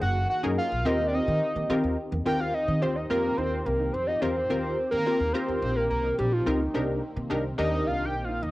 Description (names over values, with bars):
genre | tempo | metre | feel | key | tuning
funk | 107 BPM | 4/4 | straight | Eb major | A4 = 439 Hz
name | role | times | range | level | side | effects
fat analog lead | melody | 0.0-8.5 s | Eb4 to G5 | -28 LUFS | equal | cassette tape, plate reverb
warm analog pad | sustained chords | 0.0-8.5 s | Eb3 to G4 | -37 LUFS | equal | chorus, plate reverb
mellow electric guitar | riff | 0.0-8.4 s | Bb3 to Gb4 | -37 LUFS | right 3 dB | none
upright bass | bass | 0.0-8.5 s | Gb1 to Eb3 | -30 LUFS | equal | none
funky polysynth comp | accompaniment | 0.4-8.1 s | C4 to C5 | -29 LUFS | left 1 dB | chorus, plate reverb
room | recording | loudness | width
moderate small room reverb, RT60 0.5 s | home recording on cassette | -24 LUFS | side -18 dB against mid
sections
0.0-2.3 A section; 2.3-8.5 B section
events
analog synth lead solo 2.3-8.5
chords
0.0 Gb6; 0.9 Eb6; 6.7 Cm9